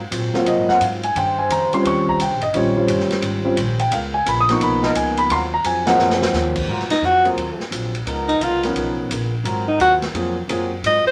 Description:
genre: jazz, big band swing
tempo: 174 BPM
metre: 4/4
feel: swing 64% on 8ths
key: Ab mixolydian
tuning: A4 = 439 Hz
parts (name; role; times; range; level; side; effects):
- hollow-body jazz guitar; accompaniment; 0.0-11.1 s; Ab2 to C5; -32 LUFS; equal; none
- upright bass; bass; 0.0-11.1 s; G1 to C3; -29 LUFS; equal; none
- swinging big-band drum kit; drums; 0.1-10.9 s; crash cymbal, hi-hat, kick drum, ride cymbal, snare drum; -30 LUFS; equal; none
- warm grand piano; accompaniment; 0.3-10.7 s; F3 to Eb6; -21 LUFS; equal; none
- dark trombone section; sustained chords; 0.7-10.4 s; F3 to C5; -30 LUFS; equal; none
- bright alto saxophone; melody; 6.9-11.1 s; Eb4 to Eb5; -18 LUFS; equal; none
room: wet club reverb, RT60 0.5 s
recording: none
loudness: -19 LUFS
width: mono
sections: 0.0-6.7 A section; 6.7-11.1 A section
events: grand piano solo 0.0-6.7; drum fill 6.0-6.3; alto saxophone solo 6.7-11.1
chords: 0.0 Ab13; 1.2 Eb13; 3.9 Db13; 5.3 Ab13; 8.1 Db13; 9.4 Ab13

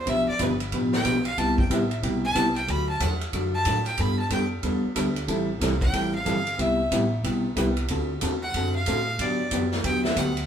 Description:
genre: country, western swing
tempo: 184 BPM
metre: 4/4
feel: swing 63% on 8ths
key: G major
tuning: A4 = 440 Hz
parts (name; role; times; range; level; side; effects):
- clear fiddle; second line; 0.0-10.5 s; B4 to B5; -27 LUFS; equal; none
- upright bass; bass; 0.0-10.5 s; G1 to A2; -30 LUFS; equal; none
- hollow-body jazz guitar; accompaniment; 0.1-10.3 s; B2 to B4; -26 LUFS; equal; none
- swinging big-band drum kit; drums; 0.1-10.4 s; hi-hat, kick drum, ride cymbal, snare drum; -30 LUFS; equal; none
- dark upright piano; accompaniment; 2.3-2.5, 4.9-7.9 s; G3 to B4; -32 LUFS; equal; none
room: wet studio reverb, RT60 0.6 s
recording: band playing live in one room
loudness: -22 LUFS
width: side -8 dB against mid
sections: 0.0-10.5 A section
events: fiddle solo 0.0-10.5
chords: 0.1 G7; 1.4 Cmaj7; 2.7 D; 4.0 Gadd9; 5.3 Am7; 6.6 Cmaj7; 7.9 D7; 9.2 Gmaj7

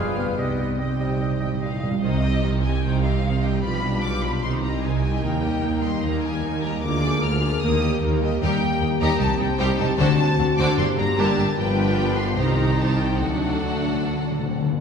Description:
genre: classical, dramatic, fast romantic movement for symphony orchestra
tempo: 150 BPM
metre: 4/4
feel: rubato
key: C minor, G minor from 8.4 s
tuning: A4 = 442 Hz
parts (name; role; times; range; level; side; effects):
- rich symphonic violin section; melody; 0.0-14.7 s; Eb5 to F6; -29 LUFS; left 2 dB; none
- hollow large flute ensemble; second line; 0.0-1.6 s; B4 to Ab5; -34 LUFS; left 5 dB; none
- rich symphonic violin section; second line; 0.0-14.7 s; Bb3 to F5; -31 LUFS; left 1 dB; none
- warm clarinet; second line; 0.0-1.6 s; B3 to Ab4; -31 LUFS; left 3 dB; none
- warm oboe; second line; 0.0-1.9 s; Eb5 to F5; -37 LUFS; right 2 dB; none
- rich symphonic viola section; accompaniment; 0.0-14.7 s; D3 to F4; -30 LUFS; equal; none
- warm bassoon; accompaniment; 0.0-1.9 s; G3; -36 LUFS; right 2 dB; none
- mellow French horn section; sustained chords; 0.0-14.8 s; G3 to Ab4; -28 LUFS; left 2 dB; none
- concert harp; arpeggios; 0.0-14.8 s; G2 to Eb5; -30 LUFS; left 5 dB; none
- clear trumpet; stabs; 0.0-1.8 s; G4 to B4; -36 LUFS; right 1 dB; none
- clear symphonic double bass section; bass; 0.0-14.7 s; G1 to Eb2; -28 LUFS; right 2 dB; none
- warm studio cello section; bass; 0.0-14.7 s; C2 to D3; -28 LUFS; right 4 dB; none
- timpani; percussion; 0.4-2.0, 10.0-14.8 s; G2 to D3; -28 LUFS; left 2 dB; none
- mellow tuba; bass; 2.0-14.7 s; G1 to Eb2; -29 LUFS; right 2 dB; none
room: wet scoring stage reverb, RT60 2.1 s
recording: heard from further back in the room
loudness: -20 LUFS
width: side -6 dB against mid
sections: 0.0-2.0 A section; 2.0-14.8 B section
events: timpani fill 0.4-2.0, 13.2-14.8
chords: 0.4 Cm; 3.6 G7/B; 4.4 Cm; 5.2 Eb; 6.8 Bb7/D; 7.6 Eb; 9.2 Cm; 10.0 D7; 10.8 Gm; 11.6 G7; 12.4 Cm7; 13.2 D

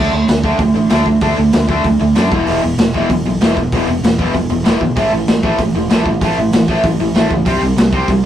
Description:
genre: punk rock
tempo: 192 BPM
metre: 4/4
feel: straight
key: E minor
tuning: A4 = 440 Hz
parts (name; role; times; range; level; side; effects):
- raw garage guitar; riff; 0.0-8.2 s; E2 to D4; -17 LUFS; left 2 dB; overdrive
- tight distorted guitar; riff; 0.0-8.3 s; E2 to D4; -18 LUFS; right 4 dB; distortion
- fretless electric bass; bass; 0.0-8.2 s; E1 to F#2; -20 LUFS; equal; none
- raw garage drum kit; drums; 0.3-8.2 s; hi-hat, kick drum, snare drum; -16 LUFS; equal; none
room: light reverb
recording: rough rehearsal-room recording, warm saturation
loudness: -12 LUFS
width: side -11 dB against mid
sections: 0.0-8.3 A section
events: none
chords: 0.0 D5; 2.3 E5; 5.0 A5; 7.5 C5

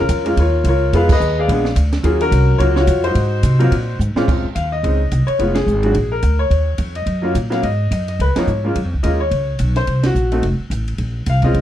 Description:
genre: jazz piano trio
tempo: 215 BPM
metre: 4/4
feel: swing 59% on 8ths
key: unclear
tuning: A4 = 437 Hz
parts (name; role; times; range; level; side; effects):
- clear upright piano; melody; 0.0-11.6 s; Bb2 to F5; -18 LUFS; left 1 dB; none
- upright bass; bass; 0.0-11.6 s; F1 to C3; -17 LUFS; equal; none
- compact cocktail drum kit; drums; 0.1-11.6 s; crash cymbal, hi-hat, kick drum, ride cymbal, snare drum; -22 LUFS; right 2 dB; none
room: light reverb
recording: dark, warm production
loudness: -14 LUFS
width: side -12 dB against mid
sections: 0.0-4.3 A section; 4.3-11.6 B section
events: band accent 1.1, 5.5, 8.3, 10.0; drum fill 4.0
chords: 0.0 Gbmaj7 (rootless); 0.9 Fm7b5; 1.5 Bb7b9; 2.0 Ebm9; 3.2 Ab9; 4.3 Dbmaj9; 5.4 Fm7b5; 6.0 Bb; 6.5 Ebm9; 7.6 Ab5; 8.2 Db13; 8.7 N.C.; 9.9 C7(b5, no3); 10.4 F; 11.0 Bbsus2

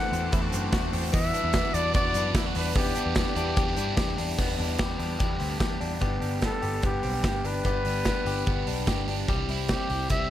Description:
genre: jangly indie pop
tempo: 147 BPM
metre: 4/4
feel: straight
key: unclear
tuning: A4 = 441 Hz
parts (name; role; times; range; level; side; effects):
- warm trumpet; melody; 0.0-10.3 s; G4 to F#5; -30 LUFS; left 1 dB; slapback echo
- crunchy overdriven guitar; accompaniment; 0.0-10.3 s; E2 to C5; -33 LUFS; right 6 dB; phaser
- clear studio string section; sustained chords; 0.0-4.4 s; B4 to D6; -38 LUFS; left 3 dB; none
- direct-recorded clean electric guitar; arpeggios; 0.0-10.3 s; E3 to G4; -32 LUFS; left 8 dB; slapback echo
- vintage muted picked electric bass; bass; 0.1-10.3 s; G1 to G2; -31 LUFS; equal; none
- big rock drum kit; drums; 0.1-10.2 s; crash cymbal, hi-hat, kick drum, snare drum; -28 LUFS; equal; none
room: small room ambience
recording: none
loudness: -24 LUFS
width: side -12 dB against mid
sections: 0.0-4.4 A section; 4.4-6.0 B section; 6.0-10.3 C section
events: none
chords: 0.0 D7/E; 1.1 Gmaj7/E; 2.8 Em7; 6.0 G; 9.3 C

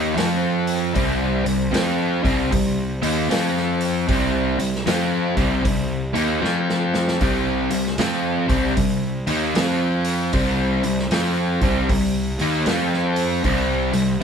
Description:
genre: blues rock power trio and southern rock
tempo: 77 BPM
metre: 4/4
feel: swing 64% on 8ths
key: C minor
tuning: A4 = 439 Hz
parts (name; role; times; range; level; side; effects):
- crunchy overdriven guitar; riff; 0.0-14.2 s; C3 to F4; -20 LUFS; equal; none
- fuzz picked electric bass; bass; 0.0-14.2 s; C2 to F2; -24 LUFS; equal; overdrive
- vintage drum kit; drums; 0.2-14.1 s; hi-hat, kick drum, snare drum; -25 LUFS; equal; none
room: moderate small room ambience, RT60 0.5 s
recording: band playing live in one room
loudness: -18 LUFS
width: side -7 dB against mid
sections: 0.0-14.2 A section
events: drum fill 6.4-7.2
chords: 0.2 F5; 1.0 Cm; 3.3 F5; 4.1 Cm; 6.4 F5; 7.2 Cm; 9.6 F5; 10.3 Cm; 12.7 F5; 13.4 C5

